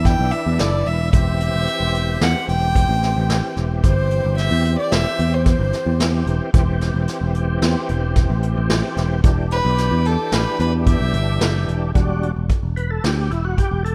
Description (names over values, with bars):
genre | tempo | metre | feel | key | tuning
progressive instrumental, band music in an uneven meter | 111 BPM | 5/4 | straight | E minor | A4 = 440 Hz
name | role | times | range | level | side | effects
rich violin | melody | 0.0-11.6 s | A4 to G5 | -26 LUFS | equal | none
overdriven tonewheel organ | accompaniment | 0.0-13.9 s | E3 to B4 | -28 LUFS | equal | chorus vibrato, slow rotary speaker
picked electric bass | bass | 0.0-13.9 s | E1 to E2 | -22 LUFS | equal | none
vintage brush drum kit | drums | 0.1-13.9 s | hi-hat, kick drum, snare drum | -22 LUFS | equal | none
room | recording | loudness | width
light reverb, small room reverb | rough home demo mix | -19 LUFS | mono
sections
0.0-12.0 A section; 12.0-13.9 B section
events
tonewheel organ solo 12.0-13.9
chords
0.0 Em7; 1.1 C/E; 9.2 Em7